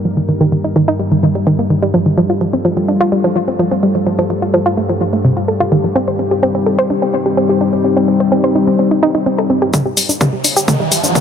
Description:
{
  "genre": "melodic techno",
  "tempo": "127 BPM",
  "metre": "4/4",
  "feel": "straight",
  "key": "unclear",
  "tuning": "A4 = 440 Hz",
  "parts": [
    { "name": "dark analog pad", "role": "sustained chords", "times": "0.0-11.2 s", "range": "G3 to Bb4", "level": "-17 LUFS", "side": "left 3 dB", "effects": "chorus, sidechain pumping" },
    { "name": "analog drone", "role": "drone", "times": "0.0-11.2 s", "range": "G2 to G3", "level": "-22 LUFS", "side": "equal", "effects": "chorus, phaser, sidechain pumping" },
    { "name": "woody wave-folded pluck", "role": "arpeggios", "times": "0.1-11.2 s", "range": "C3 to C5", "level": "-14 LUFS", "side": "right 1 dB", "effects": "chorus, cassette tape, sidechain pumping, ping-pong delay" },
    { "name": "electronic kick drum", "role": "drums", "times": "9.7-11.2 s", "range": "none", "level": "-18 LUFS", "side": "equal", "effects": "high-pass filter on kick, high-pass filter on room" },
    { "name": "house drum kit", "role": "drums", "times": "9.7-11.2 s", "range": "hi-hat, shaker, toms", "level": "-14 LUFS", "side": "left 1 dB", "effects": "none" },
    { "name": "riser", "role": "sound effects", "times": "10.3-11.2 s", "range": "none", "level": "-19 LUFS", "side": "right 2 dB", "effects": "none" }
  ],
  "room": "light reverb, digital ambience",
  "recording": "none",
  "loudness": "-12 LUFS",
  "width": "side -8 dB against mid",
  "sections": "0.0-9.7 A section; 9.7-11.2 B section",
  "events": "filter sweep on analog synth pad 0.0-9.7; build-up 9.7-11.2; drum fill 9.7-11.2; filter sweep on synth pluck 9.7-11.2; riser 10.3-11.2",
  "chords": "0.0 Eb/G; 2.2 F/G; 6.0 Cm/G; 9.7 Gm"
}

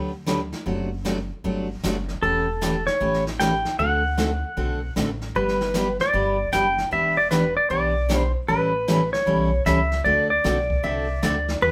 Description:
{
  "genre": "country, western swing",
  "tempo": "153 BPM",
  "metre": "4/4",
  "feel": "swing 65% on 8ths",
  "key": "unclear",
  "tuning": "A4 = 440 Hz",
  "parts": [
    { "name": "picked steel-string acoustic guitar", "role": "accompaniment", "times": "0.0-11.7 s", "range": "C3 to A4", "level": "-28 LUFS", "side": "equal", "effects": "none" },
    { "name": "upright bass", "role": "bass", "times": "0.0-11.7 s", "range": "E1 to E2", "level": "-31 LUFS", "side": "equal", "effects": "none" },
    { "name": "jazz brush drum kit", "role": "drums", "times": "0.3-11.7 s", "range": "brushed snare drum, hi-hat, kick drum, snare drum", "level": "-33 LUFS", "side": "equal", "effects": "none" },
    { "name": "pedal steel guitar", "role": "melody", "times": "2.2-11.7 s", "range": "A4 to G5", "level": "-24 LUFS", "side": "equal", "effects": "none" },
    { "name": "clean lap steel guitar", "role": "second line", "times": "10.8-11.5 s", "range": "D5 to E5", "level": "-30 LUFS", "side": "equal", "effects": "none" }
  ],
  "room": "moderate studio reverb, RT60 0.7 s",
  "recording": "band playing live in one room",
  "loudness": "-23 LUFS",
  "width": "mono",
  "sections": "0.0-11.7 A section",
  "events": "none",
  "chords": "0.0 Gmaj7; 0.7 D7/F#; 2.2 A7/E; 3.8 D7; 5.4 G6; 6.9 Em7; 8.5 A7; 10.1 D7"
}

